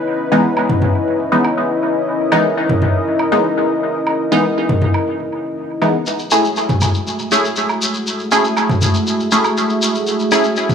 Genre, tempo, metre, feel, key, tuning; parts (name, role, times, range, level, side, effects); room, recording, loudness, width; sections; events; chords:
dub techno; 120 BPM; 4/4; straight; F# dorian; A4 = 439 Hz
dark analog pad; sustained chords; 0.0-10.7 s; A3 to E5; -19 LUFS; left 1 dB; chorus
filtered dub chord stab; stabs; 0.3-10.4 s; E3 to G#4; -17 LUFS; equal; chorus, phaser, dub echo
electronic woodblock and toms; percussion; 0.6-10.7 s; -19 LUFS; equal; dub echo
shekere; percussion; 6.1-10.7 s; -22 LUFS; left 3 dB
light reverb; dry, gritty hardware recording, small room ambience; -14 LUFS; side -7 dB against mid
0.0-10.7 A section
0.0 C#m9; 6.1 F#m9